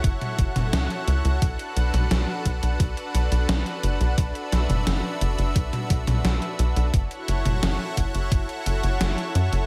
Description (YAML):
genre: synthwave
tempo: 87 BPM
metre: 4/4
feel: straight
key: B minor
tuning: A4 = 440 Hz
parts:
  - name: lush unison pad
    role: sustained chords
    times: 0.0-9.7 s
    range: D4 to F#5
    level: -32 LUFS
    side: equal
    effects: chorus, sidechain pumping
  - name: tight sequencer bass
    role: bass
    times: 0.0-9.7 s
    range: F#1 to F#2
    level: -26 LUFS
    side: equal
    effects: sidechain pumping
  - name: electronic kick drum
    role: drums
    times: 0.0-8.5 s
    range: none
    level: -26 LUFS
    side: equal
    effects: overdrive
  - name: gated 80s digital drum machine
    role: drums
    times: 0.0-9.7 s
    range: hi-hat, snare drum, toms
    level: -30 LUFS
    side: equal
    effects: gated reverb, gated reverb snare, overdrive
room: light reverb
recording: none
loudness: -24 LUFS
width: mono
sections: 0.0-9.7 A section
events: none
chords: 0.0 F#m7; 1.4 Bm7; 6.9 F#m7